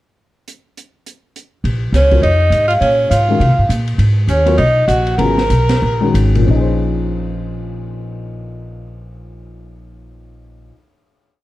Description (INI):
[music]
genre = modal jazz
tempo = 174-206 BPM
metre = 4/4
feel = swing 60% on 8ths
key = Bb minor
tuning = A4 = 439 Hz
[part]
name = open jazz drum kit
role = drums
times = 0.5-6.4 s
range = hi-hat, kick drum, ride cymbal, snare drum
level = -26 LUFS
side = equal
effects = none
[part]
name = upright bass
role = bass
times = 1.6-10.7 s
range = Ab1 to C3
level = -16 LUFS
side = equal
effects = none
[part]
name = vibraphone with soft mallets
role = melody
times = 1.9-6.1 s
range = Db5 to Bb5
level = -16 LUFS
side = equal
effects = none
[part]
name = bright tenor saxophone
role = second line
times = 2.0-6.1 s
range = Db4 to Bb4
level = -20 LUFS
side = right 5 dB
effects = none
[part]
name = dark grand piano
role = accompaniment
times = 2.1-10.8 s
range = Bb2 to Db5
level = -19 LUFS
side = left 4 dB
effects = none
[sound]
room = little or no reverb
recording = dark, warm production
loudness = -12 LUFS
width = side -16 dB against mid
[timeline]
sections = 0.5-1.6 pickup bar; 1.6-6.5 A section; 6.5-9.2 final chord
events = slowing down 4.0-6.5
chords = 0.5 N.C.; 1.6 Bbm11; 4.0 Abm11; 6.5 Bbm11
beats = | 0.48 0.77 1.06 1.35 | 1.65 1.94 2.23 2.52 | 2.82 3.11 3.40 3.69 | 3.99 4.28 4.58 4.88 | 5.19 5.50 5.82 6.15 | 6.49 6.83 7.17 7.52 | 7.86 8.21 8.55 8.89